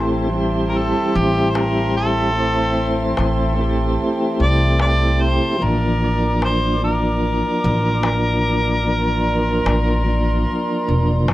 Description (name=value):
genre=trip hop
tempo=74 BPM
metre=4/4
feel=straight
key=A phrygian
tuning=A4 = 445 Hz
part: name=mellow harmonica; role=melody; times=0.0-11.3 s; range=G4 to D5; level=-23 LUFS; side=equal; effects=tape echo
part: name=mellow tonewheel organ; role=accompaniment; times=0.0-11.3 s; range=F3 to C5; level=-20 LUFS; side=equal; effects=slow rotary speaker, tremolo, tape echo
part: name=dark analog pad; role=sustained chords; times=0.0-11.3 s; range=Bb4 to D6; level=-27 LUFS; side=equal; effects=chorus
part: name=upright bass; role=bass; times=0.0-11.3 s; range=E1 to C2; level=-20 LUFS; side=equal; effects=tube saturation
part: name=bowed-like drone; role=texture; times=0.0-11.3 s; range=E3 to E4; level=-35 LUFS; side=right 2 dB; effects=none
part: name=darbuka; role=percussion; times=1.6-11.3 s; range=none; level=-26 LUFS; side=left 2 dB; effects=none
room=light reverb, small room ambience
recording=none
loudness=-16 LUFS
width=side -16 dB against mid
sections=0.0-11.3 A section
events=none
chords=0.0 Am7; 5.6 Bb/A